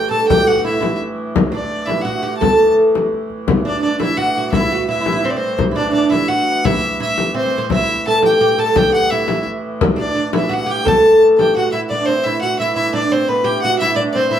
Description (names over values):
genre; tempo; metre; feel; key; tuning
medieval dance; 171 BPM; 3/4; straight; A dorian; A4 = 441 Hz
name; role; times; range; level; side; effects
clear fiddle; melody; 0.0-14.4 s; B4 to A5; -19 LUFS; left 1 dB; none
oud; second line; 0.0-14.4 s; B3 to A4; -16 LUFS; right 1 dB; none
rich hurdy-gurdy; drone; 0.0-14.4 s; A2 to E3; -26 LUFS; right 1 dB; none
frame drum; percussion; 0.3-11.5 s; none; -19 LUFS; left 4 dB; none
room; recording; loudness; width
wet large studio reverb, RT60 0.9 s; band playing live in one room; -14 LUFS; side -9 dB against mid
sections
0.0-3.5 A section; 3.5-11.9 A section; 11.9-14.4 B section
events
none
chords
none